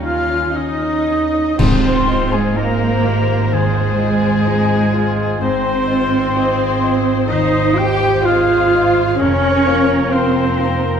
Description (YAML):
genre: cinematic, emotional film score for orchestra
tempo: 63 BPM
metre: 4/4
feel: rubato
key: Ab major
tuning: A4 = 440 Hz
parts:
  - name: muted studio violin section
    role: melody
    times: 0.0-11.0 s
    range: Db4 to C5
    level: -24 LUFS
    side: left 5 dB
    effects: none
  - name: clear clarinet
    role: second line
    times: 0.0-11.0 s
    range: Eb4 to C5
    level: -28 LUFS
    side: equal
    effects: none
  - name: clear oboe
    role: second line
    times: 0.0-11.0 s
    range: Ab4 to G5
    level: -26 LUFS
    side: equal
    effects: none
  - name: muted studio violin section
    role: second line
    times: 0.0-11.0 s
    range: Ab4 to G5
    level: -27 LUFS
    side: left 2 dB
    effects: none
  - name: silver concert flute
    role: second line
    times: 0.0-11.0 s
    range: Ab5 to G6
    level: -25 LUFS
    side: left 3 dB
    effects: none
  - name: dark baby grand piano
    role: accompaniment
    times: 0.0-11.0 s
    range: Eb2 to G5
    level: -27 LUFS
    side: left 2 dB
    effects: none
  - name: muted studio viola section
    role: accompaniment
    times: 0.0-11.0 s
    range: Ab3 to G4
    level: -28 LUFS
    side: equal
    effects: none
  - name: mellow French horn section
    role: sustained chords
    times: 0.0-11.0 s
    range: Ab3 to G4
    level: -22 LUFS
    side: left 2 dB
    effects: none
  - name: concert harp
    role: arpeggios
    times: 0.0-11.0 s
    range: F2 to F5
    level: -28 LUFS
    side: left 8 dB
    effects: none
  - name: muted studio cello section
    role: bass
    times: 0.0-11.0 s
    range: Ab3 to G4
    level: -18 LUFS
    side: right 2 dB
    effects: none
  - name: muted studio double bass section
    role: bass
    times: 0.0-11.0 s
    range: F1 to Eb2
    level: -22 LUFS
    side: right 4 dB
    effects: none
  - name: clash cymbals and concert bass drum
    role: percussion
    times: 1.6-3.5 s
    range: none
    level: -22 LUFS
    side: equal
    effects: none
  - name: timpani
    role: percussion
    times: 1.6-3.0 s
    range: Ab2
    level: -22 LUFS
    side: left 1 dB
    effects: none
room: moderate scoring stage reverb, RT60 1.9 s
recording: dark, warm production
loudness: -13 LUFS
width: side -7 dB against mid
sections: 0.0-1.6 A section; 1.6-11.0 B section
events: band accent 1.6-2.6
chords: 0.0 Eb7; 1.6 Ab6; 9.2 Fsus4